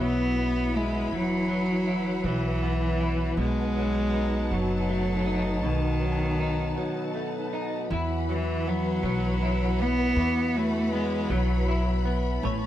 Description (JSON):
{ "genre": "six-eight pop ballad", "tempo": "53 BPM (dotted quarters)", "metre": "6/8", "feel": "straight", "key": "unclear", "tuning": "A4 = 440 Hz", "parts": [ { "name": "rich cello", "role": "melody", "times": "0.0-12.2 s", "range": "D#3 to B3", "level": "-27 LUFS", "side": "equal", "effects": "none" }, { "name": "direct-recorded clean electric guitar", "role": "accompaniment", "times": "0.0-12.7 s", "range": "B2 to C#5", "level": "-31 LUFS", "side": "equal", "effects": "double-tracked left and right" }, { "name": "warm studio string section", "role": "sustained chords", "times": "0.0-12.7 s", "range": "E3 to B5", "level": "-35 LUFS", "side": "left 2 dB", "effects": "none" }, { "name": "upright bass", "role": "bass", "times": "0.0-12.7 s", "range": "E1 to E2", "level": "-29 LUFS", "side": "equal", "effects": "none" } ], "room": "little or no reverb", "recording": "dry, close 1970s-style studio recording", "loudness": "-24 LUFS", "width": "side -12 dB against mid", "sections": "0.0-7.9 A section; 7.9-12.7 B section", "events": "break 6.8-7.9", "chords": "0.0 Esus2; 3.4 B7; 7.9 Esus2" }